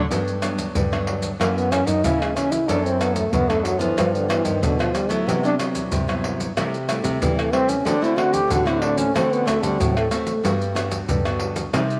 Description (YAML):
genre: samba and choro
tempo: 93 BPM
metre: 4/4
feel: straight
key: G major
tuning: A4 = 440 Hz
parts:
  - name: nylon-string guitar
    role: accompaniment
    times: 0.0-12.0 s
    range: F#2 to A4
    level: -28 LUFS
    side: equal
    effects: none
  - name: nylon-string guitar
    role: bass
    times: 0.0-12.0 s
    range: F#2 to E3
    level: -28 LUFS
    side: equal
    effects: none
  - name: maracas, surdo, pandeiro and tamborim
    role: percussion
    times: 0.1-12.0 s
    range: none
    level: -28 LUFS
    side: equal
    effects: none
  - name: warm trombone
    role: melody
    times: 1.4-10.1 s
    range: D3 to G4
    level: -25 LUFS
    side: equal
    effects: none
room: moderate plate reverb, RT60 3.5 s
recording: vinyl crackle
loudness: -21 LUFS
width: mono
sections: 0.1-12.0 A section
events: trombone solo 0.1-12.0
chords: 0.1 Gmaj7; 1.4 F#7; 2.7 Bm7/F#; 4.0 G7; 5.3 Cmaj7#11; 6.6 Am7/C; 7.9 D7; 10.4 Gmaj7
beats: | 0.10 0.75 1.40 2.04 | 2.69 3.33 3.98 4.62 | 5.27 5.92 6.56 7.21 | 7.86 8.50 9.15 9.79 | 10.44 11.09 11.73